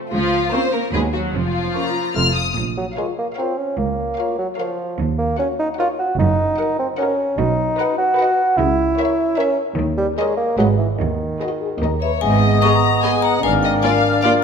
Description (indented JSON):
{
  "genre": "cinematic, playful, whimsical film cue",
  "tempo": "149 BPM",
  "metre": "3/4",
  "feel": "straight",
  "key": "Bb minor, G# minor from 7.4 s",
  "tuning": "A4 = 440 Hz",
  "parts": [
    { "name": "rich chamber violin section", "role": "second line", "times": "0.1-14.3 s", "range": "F4 to A#5", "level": "-24 LUFS", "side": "left 4 dB", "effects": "none" },
    { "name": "rich chamber viola section", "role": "accompaniment", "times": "0.1-14.3 s", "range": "F3 to B4", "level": "-28 LUFS", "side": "right 2 dB", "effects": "none" },
    { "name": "clear chamber cello section", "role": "bass", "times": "0.1-13.8 s", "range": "Db2 to D#3", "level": "-23 LUFS", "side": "right 3 dB", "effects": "none" },
    { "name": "clear chamber double bass section", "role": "bass", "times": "0.1-13.8 s", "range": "F1 to D#2", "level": "-24 LUFS", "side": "right 4 dB", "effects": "none" },
    { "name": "clear chamber violin section", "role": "melody", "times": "0.5-14.3 s", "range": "D5 to F6", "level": "-27 LUFS", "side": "left 4 dB", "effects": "none" },
    { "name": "mellow clarinet", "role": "second line", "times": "0.5-2.3, 12.2-14.4 s", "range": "D#4 to D#5", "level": "-27 LUFS", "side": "left 3 dB", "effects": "none" },
    { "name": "mellow hollow flute section", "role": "second line", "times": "0.5-2.2, 12.2-14.4 s", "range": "B5 to E#6", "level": "-26 LUFS", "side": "left 2 dB", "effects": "none" },
    { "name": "warm bassoon", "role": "accompaniment", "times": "0.5-14.4 s", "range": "D#3 to F#4", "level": "-21 LUFS", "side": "right 1 dB", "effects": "none" },
    { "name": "mellow French horn section", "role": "sustained chords", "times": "0.5-14.4 s", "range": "F#3 to Db5", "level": "-26 LUFS", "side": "left 4 dB", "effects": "none" },
    { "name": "marimba with hard mallets", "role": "melody", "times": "12.0-14.4 s", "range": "E5 to C#6", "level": "-22 LUFS", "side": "left 8 dB", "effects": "none" }
  ],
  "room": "wet scoring stage reverb, RT60 1.8 s",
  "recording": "none",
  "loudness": "-16 LUFS",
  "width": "side -6 dB against mid",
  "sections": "0.0-2.6 A section; 2.6-12.2 B section; 12.2-14.4 C section",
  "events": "none",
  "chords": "0.1 Bbm/Db; 0.9 B/D#; 1.3 Bbm/F; 2.2 F; 2.6 Bbm; 3.8 Bbm/Db; 5.0 Ebm7; 6.2 Ebm/Gb; 7.4 B; 8.6 A#dim/C#; 9.8 D#5; 10.6 G#m; 11.0 G#m/D#; 11.8 D#; 12.2 G#m; 13.4 A#7/G#"
}